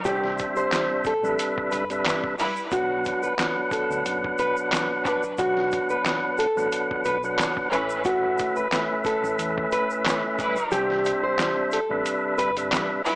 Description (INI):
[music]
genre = hip hop, boom-bap hip-hop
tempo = 90 BPM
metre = 4/4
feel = swing 55% on 16ths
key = B minor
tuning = A4 = 439 Hz
[part]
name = tonewheel organ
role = accompaniment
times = 0.0-13.0 s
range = A2 to F#5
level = -26 LUFS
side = equal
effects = overdrive, fast rotary speaker, high-pass filter, low-pass filter
[part]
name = rich studio string section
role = stabs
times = 0.0-13.2 s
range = E3 to B4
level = -28 LUFS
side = equal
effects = high-pass filter, low-pass filter, digital delay
[part]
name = tube shaker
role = percussion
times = 0.0-13.2 s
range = none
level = -45 LUFS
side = right 1 dB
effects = none
[part]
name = nylon-string guitar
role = melody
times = 0.1-12.5 s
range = F#4 to C5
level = -26 LUFS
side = equal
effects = high-pass filter, low-pass filter, digital delay
[part]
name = deep dub fingered electric bass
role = bass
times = 0.1-12.8 s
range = F#1 to E2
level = -38 LUFS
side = equal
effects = none
[part]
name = trip hop sampler-style drum kit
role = drums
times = 0.1-13.2 s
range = handclaps, hi-hat, kick drum, snare drum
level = -28 LUFS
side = equal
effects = none
[sound]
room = light reverb, small room ambience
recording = small speaker sound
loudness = -22 LUFS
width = side -21 dB against mid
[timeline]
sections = 0.0-13.2 A section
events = kick muted 10.7-13.2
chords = 0.1 Cmaj7; 2.7 Bm; 7.7 Aadd9; 10.7 Cmaj7